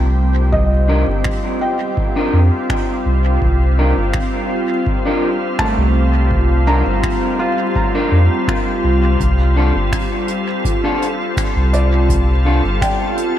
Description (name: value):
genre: ambient dub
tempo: 83 BPM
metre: 4/4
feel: straight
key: C dorian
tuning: A4 = 436 Hz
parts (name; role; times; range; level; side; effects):
- soft additive organ-like pad; sustained chords; 0.0-13.4 s; G3 to G5; -19 LUFS; equal; ensemble chorus, built-in reverb
- felt-muted upright piano; arpeggios; 0.0-13.4 s; A3 to Bb5; -24 LUFS; right 1 dB; tape echo
- warm sub bass; bass; 0.0-12.8 s; G1 to F2; -14 LUFS; equal; none
- electronic kick drum; drums; 0.5-13.0 s; none; -21 LUFS; equal; none
- electric guitar at the edge of break-up; stabs; 0.9-12.6 s; D4 to Bb4; -24 LUFS; left 1 dB; vibrato effect, dub echo
- jazz brush drum kit; drums; 1.2-13.3 s; finger snaps, hi-hat; -30 LUFS; right 1 dB; dub echo
room: moderate recital hall reverb, RT60 1.5 s, small room ambience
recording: vinyl crackle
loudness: -14 LUFS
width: side -11 dB against mid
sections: 0.0-13.4 A section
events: none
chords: 0.0 Cm9; 9.2 Dm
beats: | 0.53 1.25 1.97 2.70 | 3.42 4.14 4.87 5.59 | 6.31 7.03 7.76 8.48 | 9.20 9.93 10.65 11.37 | 12.09 12.82